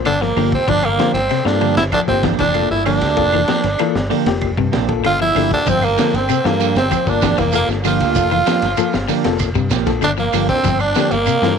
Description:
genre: afrobeat.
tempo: 96 BPM.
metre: 4/4.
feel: straight.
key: G dorian.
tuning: A4 = 440 Hz.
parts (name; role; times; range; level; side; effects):
bright reed electric piano; accompaniment; 0.0-11.6 s; Bb3 to C5; -23 LUFS; left 14 dB; fast tremolo.
fingered electric bass; bass; 0.0-11.6 s; F1 to G2; -22 LUFS; equal; none.
growling tenor saxophone; melody; 0.1-11.6 s; Bb3 to F4; -19 LUFS; equal; tape echo.
bright trombone; second line; 0.1-11.6 s; Bb3 to F4; -23 LUFS; right 15 dB; none.
electric guitar at the edge of break-up; arpeggios; 0.1-11.5 s; C3 to F3; -23 LUFS; left 14 dB; none.
crunchy breakbeat drum kit; drums; 0.1-11.6 s; hi-hat, kick drum, ride cymbal, snare drum; -24 LUFS; equal; none.
claves; percussion; 0.1-11.4 s; none; -30 LUFS; right 15 dB; none.
clean electric guitar; stabs; 0.4-11.2 s; F3 to G4; -23 LUFS; right 14 dB; none.
shekere; percussion; 5.7-11.6 s; none; -28 LUFS; right 10 dB; none.
room: small room ambience.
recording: 1960s-style stereo with parts hard left and right.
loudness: -14 LUFS.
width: side -6 dB against mid.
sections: 0.0-11.6 A section.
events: none.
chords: 0.0 Gm7.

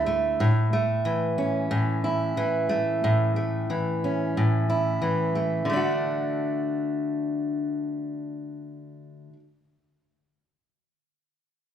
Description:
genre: pop.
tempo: 91 BPM.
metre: 4/4.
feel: swing 55% on 16ths.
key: D major.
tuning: A4 = 440 Hz.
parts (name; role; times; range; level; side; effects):
fingerpicked steel-string acoustic guitar; accompaniment; 0.0-9.4 s; A2 to F#4; -23 LUFS; equal; none.
room: light reverb.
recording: none.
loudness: -23 LUFS.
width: side -9 dB against mid.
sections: 0.0-5.7 A section; 5.7-8.3 B section.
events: none.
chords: 0.4 A; 5.7 D.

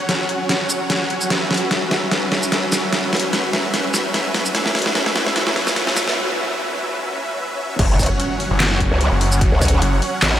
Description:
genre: heavy wobble dubstep.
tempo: 148 BPM.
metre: 4/4.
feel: swing 54% on 16ths, half-time.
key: unclear.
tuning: A4 = 441 Hz.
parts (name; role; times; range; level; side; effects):
supersaw chords; sustained chords; 0.0-10.4 s; F#3 to F#5; -23 LUFS; right 1 dB; ensemble chorus, sidechain pumping.
ethereal airy pad; texture; 0.0-6.2 s; F#4 to F#5; -30 LUFS; equal; ensemble chorus, built-in reverb, sidechain pumping.
dubstep drum kit; drums; 0.1-10.3 s; crash cymbal, handclaps, hi-hat, shaker, snare drum; -20 LUFS; equal; none.
riser and impact; sound effects; 4.1-9.4 s; none; -31 LUFS; equal; none.
growl bass; bass; 7.8-10.4 s; F#1 to C#2; -17 LUFS; equal; chorus, overdrive.
electronic kick drum; drums; 7.8-9.7 s; none; -19 LUFS; equal; none.
snarling distorted saw bass; bass; 8.5-10.0 s; F#1; -18 LUFS; equal; overdrive.
room: wet huge ambient reverb, RT60 8.1 s.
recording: dreamy mix soaked in reverb, high-pass filter.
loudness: -16 LUFS.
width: side -11 dB against mid.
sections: 0.0-7.8 A section; 7.8-10.4 B section.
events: build-up 0.0-7.8; drum fill 0.0-6.2; break 6.2-7.8; drop 7.8-10.4; impact 7.8-9.4.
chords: 0.0 F#5.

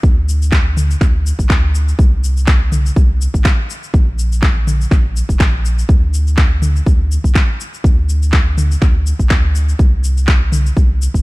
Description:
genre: afro house.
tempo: 123 BPM.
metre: 4/4.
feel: swing 55% on 16ths.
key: unclear.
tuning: A4 = 440 Hz.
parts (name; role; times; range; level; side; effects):
warm sub bass; bass; 0.0-11.2 s; F1 to D2; -15 LUFS; equal; sidechain pumping.
afro-pop drum kit; drums; 0.0-11.2 s; cabasa, finger snaps, handclaps, toms; -22 LUFS; left 1 dB; studio reverb.
electronic kick drum; drums; 0.0-11.2 s; none; -12 LUFS; equal; studio reverb.
room: little or no reverb.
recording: dark, warm production.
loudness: -11 LUFS.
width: side -21 dB against mid.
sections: 0.0-11.2 A section.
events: none.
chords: none.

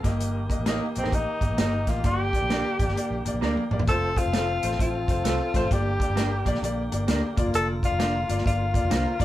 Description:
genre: uptempo 1960s-style soul.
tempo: 131 BPM.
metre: 4/4.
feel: swing 64% on 8ths.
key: unclear.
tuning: A4 = 441 Hz.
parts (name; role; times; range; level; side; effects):
warm tenor saxophone; melody; 0.0-9.2 s; C4 to A4; -27 LUFS; left 2 dB; none.
warm grand piano; accompaniment; 0.0-9.2 s; G2 to Eb5; -30 LUFS; left 1 dB; none.
tonewheel organ; sustained chords; 0.0-9.2 s; D3 to A4; -37 LUFS; right 1 dB; overdrive.
vintage muted fingered electric bass; bass; 0.0-9.2 s; F1 to F2; -29 LUFS; equal; none.
warm soul drum kit; drums; 0.0-9.2 s; hi-hat, kick drum, snare drum, toms; -27 LUFS; equal; none.
electric guitar through a small old amp; stabs; 0.7-9.0 s; A3 to Bb4; -32 LUFS; right 3 dB; spring reverb.
room: moderate studio reverb, RT60 0.6 s.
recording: band playing live in one room.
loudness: -22 LUFS.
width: side -14 dB against mid.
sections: 0.0-3.9 A section; 3.9-9.2 B section.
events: drum fill 3.4-3.9.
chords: 0.0 Eb/G; 2.0 Gm; 3.9 F; 5.7 Gm; 7.3 Bb/F.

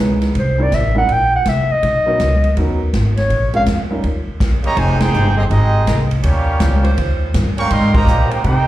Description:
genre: jazz, big band swing.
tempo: 163 BPM.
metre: 4/4.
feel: swing 65% on 8ths.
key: F minor from 4.8 s.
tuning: A4 = 440 Hz.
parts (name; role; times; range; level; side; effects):
warm concert grand piano; accompaniment; 0.0-4.0 s; F#3 to Cb5; -22 LUFS; right 1 dB; plate reverb, slapback echo.
upright bass; bass; 0.0-8.7 s; F1 to C3; -16 LUFS; equal; none.
swinging big-band drum kit; drums; 0.2-8.6 s; crash cymbal, hi-hat, kick drum, ride cymbal, snare drum; -21 LUFS; equal; none.
warm clarinet; melody; 0.4-3.6 s; C5 to G5; -17 LUFS; equal; plate reverb, slapback echo.
brilliant trumpet section; melody; 4.6-8.7 s; Bb3 to Db6; -20 LUFS; right 2 dB; plate reverb, slapback echo.
muted trombone section; second line; 4.6-8.7 s; C3 to Ab4; -22 LUFS; right 4 dB; plate reverb, slapback echo.
mellow saxophone section; sustained chords; 5.1-8.0 s; F3 to C5; -27 LUFS; equal; plate reverb.
room: light reverb.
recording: live gig heard through the venue's PA, club reverb.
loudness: -13 LUFS.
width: side -14 dB against mid.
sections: 0.0-4.8 A section; 4.8-8.7 B section.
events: clarinet solo 0.0-4.8; band accent 4.9, 7.9.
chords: 0.3 C9; 1.8 Bmaj9; 3.3 Bbm7; 4.0 Eb7; 4.8 Fm9; 6.2 Eb13; 7.7 Abmaj9.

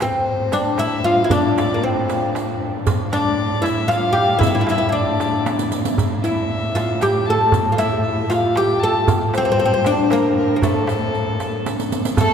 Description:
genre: Arabic maqam ensemble.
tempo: 116 BPM.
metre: 3/4.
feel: straight.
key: A maqam kurd.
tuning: A4 = 440 Hz.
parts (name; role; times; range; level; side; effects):
oud; melody; 0.0-12.3 s; A3 to A4; -19 LUFS; left 1 dB; none.
warm violin; second line; 0.0-12.3 s; A4 to A5; -24 LUFS; left 3 dB; none.
clear cello; drone; 0.0-12.2 s; A2; -27 LUFS; equal; none.
darbuka; percussion; 0.0-12.3 s; none; -24 LUFS; right 1 dB; none.
riq; percussion; 0.0-12.3 s; none; -29 LUFS; right 4 dB; none.
warm chamber violin section; second line; 12.2-12.3 s; A4; -18 LUFS; right 4 dB; none.
room: wet cathedral reverb, RT60 6.7 s.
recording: recorded in a church or concert hall.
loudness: -16 LUFS.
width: side -7 dB against mid.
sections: 0.0-12.2 A section.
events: drum fill 5.5-6.0, 11.7-12.2.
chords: none.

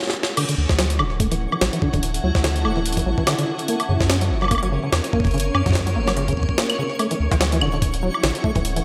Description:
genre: IDM.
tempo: 145 BPM.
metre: 4/4.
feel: swing 56% on 16ths.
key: D major.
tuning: A4 = 440 Hz.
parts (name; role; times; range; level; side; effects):
jungle sampler-style drum kit; drums; 0.0-8.8 s; crash cymbal, hi-hat, snare drum, woodblock; -26 LUFS; equal; none.
granular cloud pad; sustained chords; 0.4-8.8 s; E4 to A5; -32 LUFS; equal; built-in reverb.
deep acid bass; arpeggios; 0.4-8.8 s; C#3 to C#4; -27 LUFS; equal; lush chorus, delay, slapback echo.
twinkling granular texture; texture; 0.4-8.8 s; C#4 to C#6; -35 LUFS; equal; built-in reverb.
warm sub bass; bass; 0.6-8.8 s; D1 to F#2; -25 LUFS; equal; none.
electronic kick drum; drums; 0.7-8.6 s; none; -25 LUFS; equal; none.
room: moderate recital hall reverb, RT60 1.3 s.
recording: big arena sound.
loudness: -21 LUFS.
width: mono.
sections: 0.4-8.8 A section.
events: drum fill 0.0-0.4; stop 0.0-0.4.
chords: 0.4 Dadd9; 3.7 F#; 7.0 Dadd9.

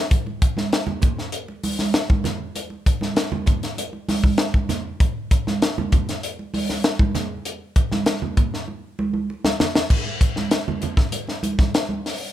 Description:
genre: funk.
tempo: 98 BPM.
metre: 4/4.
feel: straight.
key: none.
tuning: none.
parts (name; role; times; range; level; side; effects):
crisp fusion drum kit; drums; 0.1-12.2 s; crash cymbal, hi-hat, kick drum, snare drum; -20 LUFS; equal; none.
congas; percussion; 0.1-12.0 s; none; -26 LUFS; right 4 dB; none.
room: light reverb.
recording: none.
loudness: -20 LUFS.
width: side -12 dB against mid.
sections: 0.1-9.9 A section; 9.9-12.3 B section.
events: drum fill 8.7-9.9.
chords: none.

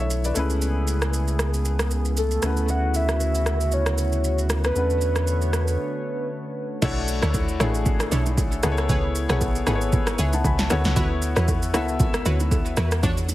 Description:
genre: amapiano.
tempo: 116 BPM.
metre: 4/4.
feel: swing 55% on 16ths.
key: unclear.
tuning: A4 = 439 Hz.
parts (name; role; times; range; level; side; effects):
warm baby grand piano; accompaniment; 0.0-13.1 s; A3 to B5; -29 LUFS; left 4 dB; none.
lush unison pad; sustained chords; 0.0-6.8 s; C#3 to C#5; -31 LUFS; right 1 dB; chorus, sidechain pumping.
warm sub bass; bass; 0.0-5.8 s; B1 to E2; -23 LUFS; equal; none.
deep house drum kit; drums; 0.1-13.3 s; crash cymbal, kick drum, rim click, shaker, snare drum; -25 LUFS; equal; overdrive.
soft octave-layered synth lead; melody; 2.2-6.3 s; A4 to F#5; -27 LUFS; equal; chorus, phaser, digital delay.
punchy chord stab; stabs; 6.8-13.3 s; D4 to C#5; -31 LUFS; right 1 dB; chorus, digital delay.
woody log drum bass; bass; 6.8-13.3 s; G#1 to E2; -24 LUFS; equal; none.
congas and bongos; percussion; 6.8-13.3 s; none; -32 LUFS; right 4 dB; none.
room: light reverb, digital ambience.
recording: heavily compressed radio sound, multiband compression.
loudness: -20 LUFS.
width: side -15 dB against mid.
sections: 0.0-6.8 A section; 6.8-13.3 B section.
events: break 5.8-6.8; drop 6.8-13.3.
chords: 0.4 Amaj9/C#; 2.4 Dmaj13; 4.8 E13sus4; 6.8 Bm11; 8.6 Amaj9; 10.7 Dmaj13.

